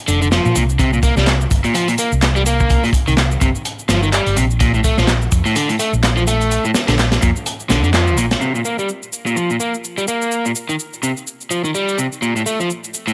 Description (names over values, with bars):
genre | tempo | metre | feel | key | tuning
breakbeat, breaks | 126 BPM | 4/4 | swing 58% on 16ths | unclear | A4 = 440 Hz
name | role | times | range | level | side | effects
overdriven electric guitar | riff | 0.1-13.1 s | A2 to Bb3 | -21 LUFS | equal | tube saturation, low-pass filter, tape echo
hollow-body short-scale fingered electric bass | bass | 0.1-8.3 s | F1 to Bb2 | -20 LUFS | equal | none
crunchy breakbeat drum kit | drums | 0.1-8.4 s | hi-hat, kick drum, snare drum | -21 LUFS | equal | none
electronic shaker and handclaps | drums | 0.1-13.1 s | none | -26 LUFS | equal | none
room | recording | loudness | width
light reverb, studio ambience | dry, gritty hardware recording, vinyl crackle | -17 LUFS | mono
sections
0.0-8.4 A section; 8.4-13.1 B section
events
band accent 7.9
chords
0.0 Bb; 0.8 C7(no3); 4.6 Bbmaj7(no3); 8.4 C7(no3); 12.2 Bbmaj7(no3)